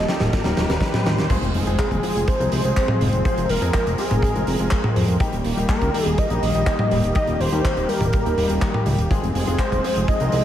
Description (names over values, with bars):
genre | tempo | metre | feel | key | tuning
italo disco | 123 BPM | 4/4 | straight | F minor | A4 = 440 Hz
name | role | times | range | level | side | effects
wide unison lead | melody | 0.0-10.4 s | Ab4 to Eb5 | -25 LUFS | equal | ping-pong delay
warm analog pad | sustained chords | 0.0-10.4 s | Eb3 to Bb4 | -26 LUFS | equal | chorus
clear grand piano | stabs | 0.0-10.3 s | G3 to Bb4 | -30 LUFS | left 5 dB | none
fat analog bass | bass | 0.0-10.4 s | Eb1 to F2 | -24 LUFS | equal | none
riser and impact | sound effects | 0.0-3.3 s | none | -30 LUFS | equal | none
huge arena drum kit | drums | 0.1-10.4 s | crash cymbal, handclaps, hi-hat, snare drum, toms | -25 LUFS | right 1 dB | gated reverb
kick drum | drums | 0.3-10.2 s | none | -25 LUFS | equal | none
room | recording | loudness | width
light reverb, studio reverb | vinyl crackle | -18 LUFS | side -11 dB against mid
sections
0.0-1.3 A section; 1.3-10.4 B section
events
drum fill 0.0-1.3; riser 0.0-1.3; impact 1.3-3.3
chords
0.0 Eb; 1.3 Fm; 5.2 Eb; 9.1 Fm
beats
0.33 0.81 | 1.30 1.79 2.28 2.77 | 3.25 3.74 4.23 4.72 | 5.21 5.69 6.18 6.67 | 7.16 7.64 8.13 8.62 | 9.11 9.60 10.08